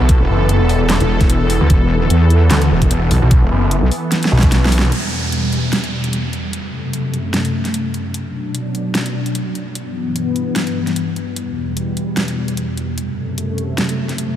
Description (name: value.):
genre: heavy wobble dubstep.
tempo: 149 BPM.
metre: 4/4.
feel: swing 55% on 16ths, half-time.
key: E minor.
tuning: A4 = 440 Hz.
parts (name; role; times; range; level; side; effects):
lush unison pad; sustained chords; 0.0-14.4 s; E2 to A4; -20 LUFS; left 1 dB; chorus, phaser, sidechain pumping.
snarling distorted saw bass; bass; 0.0-4.9 s; E1 to D2; -14 LUFS; equal; distortion, overdrive.
dubstep drum kit; drums; 0.1-14.3 s; handclaps, hi-hat, snare drum; -23 LUFS; equal; overdrive.
electronic kick drum; drums; 0.1-4.5 s; none; -13 LUFS; equal; overdrive.
wobble bass; bass; 0.2-3.9 s; E1 to E2; -14 LUFS; equal; chorus, overdrive.
downlifter; sound effects; 4.9-8.1 s; none; -29 LUFS; right 2 dB; none.
room: moderate huge ambient reverb, RT60 8.4 s.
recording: dreamy mix soaked in reverb.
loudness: -14 LUFS.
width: side -11 dB against mid.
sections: 0.0-4.9 A section; 4.9-14.4 B section.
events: drop 0.0-4.9; drum fill 4.1-4.9; band accent 4.8; filter sweep on analog synth pad 4.9-14.4.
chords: 0.0 E5; 4.9 Em; 6.5 F#dim; 8.1 Bm; 9.8 G6; 11.4 Em; 13.0 F#dim.